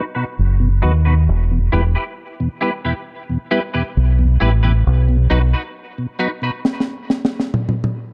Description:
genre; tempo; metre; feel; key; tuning
dub reggae; 67 BPM; 4/4; straight; E harmonic minor; A4 = 440 Hz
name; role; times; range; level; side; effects
clean electric guitar; accompaniment; 0.0-6.5 s; D#4 to B4; -27 LUFS; equal; ensemble chorus, low-pass filter, tape echo
mellow tonewheel organ; accompaniment; 0.2-6.5 s; E2 to E4; -26 LUFS; equal; slow rotary speaker, low-pass filter
deep dub fingered electric bass; bass; 0.4-5.5 s; E1 to D#2; -16 LUFS; equal; none
deep reggae drum kit; drums; 6.6-8.0 s; snare drum, toms; -21 LUFS; equal; none
room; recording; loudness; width
light reverb; dark, warm production; -18 LUFS; mono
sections
0.0-8.1 A section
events
drum fill 6.6-8.1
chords
0.0 B; 1.3 Em; 4.9 B

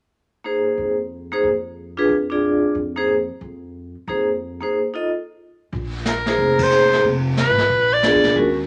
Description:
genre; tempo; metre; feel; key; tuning
jazz, small-group swing and bop; 182 BPM; 4/4; swing 64% on 8ths; unclear; A4 = 440 Hz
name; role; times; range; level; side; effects
vibraphone with medium hard mallets; accompaniment; 0.4-8.6 s; Ab3 to Eb5; -21 LUFS; equal; none
upright bass; bass; 0.8-8.7 s; F1 to Bb2; -30 LUFS; equal; none
vintage brush drum kit; drums; 5.7-8.7 s; brushed snare drum, hi-hat, kick drum, ride cymbal, snare drum; -28 LUFS; equal; none
bright soprano saxophone; melody; 6.1-8.4 s; Bb4 to D5; -20 LUFS; equal; none
room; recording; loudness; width
moderate large studio reverb, RT60 1.1 s; none; -19 LUFS; mono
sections
0.5-5.7 A section; 5.7-8.7 B section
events
break 4.4-5.7; band accent 6.6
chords
0.5 Bbsus2; 1.8 Fm6; 3.1 Fmadd11; 4.4 Bb9sus4; 5.1 N.C.; 5.7 Bbsus2; 7.0 Fdim; 7.7 Bb7b9

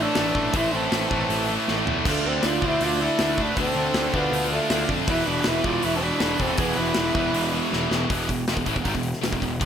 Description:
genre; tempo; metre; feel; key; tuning
heavy metal; 159 BPM; 4/4; straight; unclear; A4 = 440 Hz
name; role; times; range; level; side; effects
warm French horn; melody; 0.0-7.5 s; A3 to F4; -27 LUFS; equal; none
high-gain lead guitar; second line; 0.0-7.5 s; F4 to D5; -31 LUFS; right 3 dB; distortion
distorted electric guitar; riff; 0.0-8.1 s; E2 to D4; -30 LUFS; equal; distortion
heavy high-gain guitar; riff; 0.0-9.7 s; E2 to D4; -29 LUFS; right 12 dB; distortion
scooped high-gain guitar; riff; 0.0-9.7 s; E2 to D4; -29 LUFS; left 14 dB; distortion
fuzz picked electric bass; bass; 0.0-9.7 s; E1 to F2; -29 LUFS; equal; overdrive
big rock drum kit; drums; 0.2-9.7 s; crash cymbal, hi-hat, kick drum, snare drum, splash cymbal, toms; -28 LUFS; left 1 dB; none
room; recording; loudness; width
little or no reverb; none; -21 LUFS; side -8 dB against mid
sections
0.0-8.1 A section; 8.1-9.7 B section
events
drum fill 1.7-2.1, 7.7-8.1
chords
0.0 Am; 2.1 Dm; 5.1 E5; 8.1 E

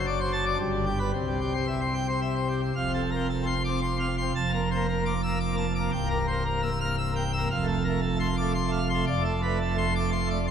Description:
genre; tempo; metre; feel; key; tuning
classical, organ toccata; 114 BPM; 3/4; straight; F major; A4 = 440 Hz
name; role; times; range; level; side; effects
pipe organ, plenum; solo; 0.0-10.5 s; C1 to F6; -25 LUFS; equal; none
room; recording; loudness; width
wet church reverb, RT60 2.9 s; minimal, uncompressed stereo recording; -25 LUFS; side -8 dB against mid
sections
0.0-2.8 A section; 2.8-10.5 B section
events
none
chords
0.0 D7/F#; 0.6 G; 1.1 C; 2.8 F; 4.4 Bbmaj7/F; 5.9 C7; 7.5 F; 9.1 Dm7/F

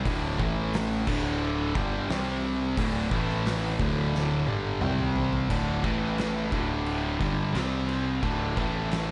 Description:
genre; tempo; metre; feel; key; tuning
stoner and doom metal; 88 BPM; 4/4; straight; unclear; A4 = 440 Hz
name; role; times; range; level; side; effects
distorted electric guitar; riff; 0.0-9.1 s; D2 to C4; -34 LUFS; equal; overdrive
thick fuzz guitar; riff; 0.0-9.1 s; D2 to C4; -32 LUFS; equal; distortion
overdriven picked electric bass; bass; 0.1-9.1 s; D1 to C2; -35 LUFS; equal; none
oversized low-tuned drum kit; drums; 0.1-9.1 s; crash cymbal, hi-hat, kick drum, snare drum, toms; -34 LUFS; equal; none
room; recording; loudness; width
small room ambience; nothing above 10.9 kHz; -28 LUFS; mono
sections
0.0-5.5 A section; 5.5-9.1 B section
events
drum fill 4.1-5.5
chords
0.1 D5; 0.4 A5; 1.1 D5; 2.1 C5; 2.8 D5; 3.1 A5; 3.8 D5; 4.8 C5; 5.5 D5; 5.8 A5; 6.5 D5; 7.5 C5; 8.2 D5; 8.6 A5

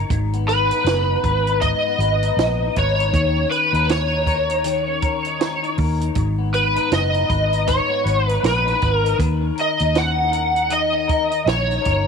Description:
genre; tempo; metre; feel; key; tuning
indie pop, bedroom pop; 79 BPM; 4/4; swing 60% on 16ths; G# minor; A4 = 440 Hz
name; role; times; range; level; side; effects
clean electric guitar; accompaniment; 0.0-12.1 s; G#2 to B4; -26 LUFS; left 13 dB; analog chorus, vibrato effect
vintage muted fingered electric bass; bass; 0.0-12.1 s; F#1 to D#2; -22 LUFS; equal; none
compact cocktail drum kit; drums; 0.1-12.1 s; hi-hat, kick drum, snare drum; -25 LUFS; right 4 dB; none
overdriven slide guitar; melody; 0.5-12.1 s; B4 to F#5; -19 LUFS; equal; ensemble chorus, tape echo
room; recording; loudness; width
studio reverb; 1960s-style stereo; -17 LUFS; side -6 dB against mid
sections
0.0-12.1 A section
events
none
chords
0.1 G#m; 3.1 D#5; 6.2 G#m; 9.2 D#m7

